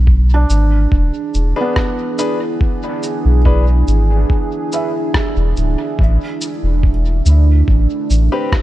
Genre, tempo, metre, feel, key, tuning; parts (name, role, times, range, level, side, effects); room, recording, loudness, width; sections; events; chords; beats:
ambient dub; 71 BPM; 4/4; straight; A4 = 440 Hz
deep dark ambient pad; sustained chords; 0.0-8.6 s; A3 to G#4; -22 LUFS; right 3 dB; chorus, built-in reverb
soft dub sub bass; bass; 0.0-8.3 s; D1 to D2; -12 LUFS; equal
electronic kick drum; drums; 0.1-8.6 s; -15 LUFS; equal
felt-muted upright piano; arpeggios; 0.3-8.6 s; B3 to E5; -25 LUFS; right 3 dB; dub echo
electronic cabasa and rim click; drums; 0.5-8.6 s; -24 LUFS; equal; dub echo
warm upright piano; stabs; 1.6-8.5 s; C4 to B4; -24 LUFS; left 4 dB; dub echo
little or no reverb; -13 LUFS; side -15 dB against mid
0.0-8.6 A section
0.0 E7; 6.0 A7(no3)
0.07 0.92 1.76 | 2.61 3.45 4.30 5.14 | 5.99 6.83 7.68 8.52